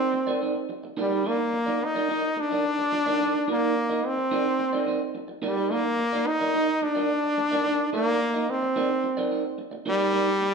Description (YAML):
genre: disco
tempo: 108 BPM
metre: 4/4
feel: straight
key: unclear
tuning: A4 = 440 Hz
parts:
  - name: brilliant trombone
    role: melody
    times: 0.0-10.5 s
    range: G3 to Eb4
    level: -24 LUFS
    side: left 1 dB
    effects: none
  - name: electric guitar through a small old amp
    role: accompaniment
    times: 0.0-10.5 s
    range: Eb4 to Eb5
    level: -28 LUFS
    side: right 3 dB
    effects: none
room: wet large studio reverb, RT60 1.2 s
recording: band playing live in one room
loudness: -23 LUFS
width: side -5 dB against mid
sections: 0.0-10.5 A section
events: none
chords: 0.0 Eb5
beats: 0.14 0.70 | 1.25 1.81 2.37 2.93 | 3.48 4.04 4.60 5.15 | 5.71 6.26 6.82 7.38 | 7.93 8.49 9.04 9.60 | 10.15